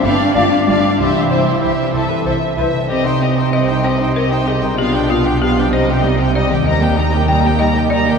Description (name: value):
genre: cinematic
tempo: 64 BPM (dotted quarters)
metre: 6/8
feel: straight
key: C minor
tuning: A4 = 440 Hz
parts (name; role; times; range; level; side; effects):
- rich chamber violin section; melody; 0.0-8.2 s; Eb5 to Bb5; -22 LUFS; left 2 dB; none
- rich chamber violin section; second line; 0.0-8.2 s; Eb4 to D5; -24 LUFS; left 1 dB; none
- warm chamber viola section; accompaniment; 0.0-8.2 s; G3 to E4; -21 LUFS; right 2 dB; none
- concert harp; arpeggios; 0.0-8.2 s; G2 to A4; -20 LUFS; left 4 dB; none
- dark chamber cello section; bass; 0.0-8.2 s; Eb2 to B3; -20 LUFS; right 4 dB; none
- rich chamber double bass section; bass; 0.0-8.2 s; G1 to Eb2; -21 LUFS; right 3 dB; none
- warm clarinet; second line; 0.3-2.7 s; C5 to D5; -28 LUFS; equal; none
- mellow hollow flute section; second line; 0.4-2.6 s; E5 to F5; -25 LUFS; left 4 dB; none
- mellow French horn section; sustained chords; 0.4-2.7 s; E4 to D5; -27 LUFS; left 3 dB; none
- folk marimba with hard mallets; melody; 2.6-8.2 s; F4 to G5; -21 LUFS; left 3 dB; none
room: wet cathedral reverb, RT60 4.5 s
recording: minimal, uncompressed stereo recording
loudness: -13 LUFS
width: side -5 dB against mid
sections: 0.0-2.9 A section; 2.9-8.2 B section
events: none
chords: 0.0 G7(no3); 1.0 C; 2.9 Cm; 4.8 G7/B; 5.7 Cm; 6.7 Eb